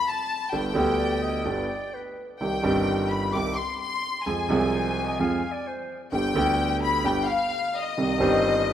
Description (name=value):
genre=tango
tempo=129 BPM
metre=4/4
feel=rubato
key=C harmonic minor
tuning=A4 = 439 Hz
part: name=clear studio violin section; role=second line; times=0.0-8.7 s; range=Eb5 to D6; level=-27 LUFS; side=left 4 dB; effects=none
part: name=clear concert grand piano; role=accompaniment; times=0.5-8.7 s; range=G1 to Ab4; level=-25 LUFS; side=right 2 dB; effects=none
part: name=warm clarinet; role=second line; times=1.0-8.7 s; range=B4 to F5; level=-35 LUFS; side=right 2 dB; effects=none
room=moderate lush hall reverb, RT60 2.9 s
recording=rough home demo mix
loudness=-23 LUFS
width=side -10 dB against mid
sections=0.0-8.7 A section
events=violin section solo 0.0-8.7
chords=0.0 N.C.; 0.5 G; 2.4 Cm; 4.3 Fm; 6.1 G; 8.0 Cm